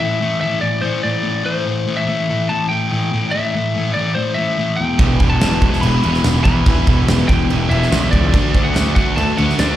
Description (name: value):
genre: classic rock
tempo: 144 BPM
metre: 4/4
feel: straight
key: unclear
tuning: A4 = 440 Hz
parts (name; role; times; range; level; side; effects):
- lightly driven lead guitar; melody; 0.0-9.8 s; C5 to B5; -22 LUFS; left 1 dB; slapback echo
- sludgy distorted guitar; riff; 0.0-9.8 s; E2 to D4; -19 LUFS; left 3 dB; overdrive
- overdriven reed electric piano; accompaniment; 5.0-9.7 s; D4 to G5; -33 LUFS; right 6 dB; none
- picked swing-style acoustic guitar; accompaniment; 5.0-9.8 s; E2 to G4; -32 LUFS; right 6 dB; none
- biting overdriven guitar; riff; 5.0-9.8 s; E2 to D4; -24 LUFS; right 3 dB; none
- cranked stack guitar; riff; 5.0-9.8 s; D3 to E4; -26 LUFS; right 12 dB; overdrive, slapback echo
- fuzz picked electric bass; bass; 5.0-9.7 s; E1 to E2; -18 LUFS; right 1 dB; overdrive
- huge arena drum kit; drums; 5.0-9.7 s; crash cymbal, kick drum, snare drum; -17 LUFS; right 1 dB; none
room: little or no reverb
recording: live gig heard through the venue's PA, club reverb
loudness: -14 LUFS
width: side -12 dB against mid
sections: 0.0-9.8 A section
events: none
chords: 0.0 A5; 4.8 Em; 8.3 D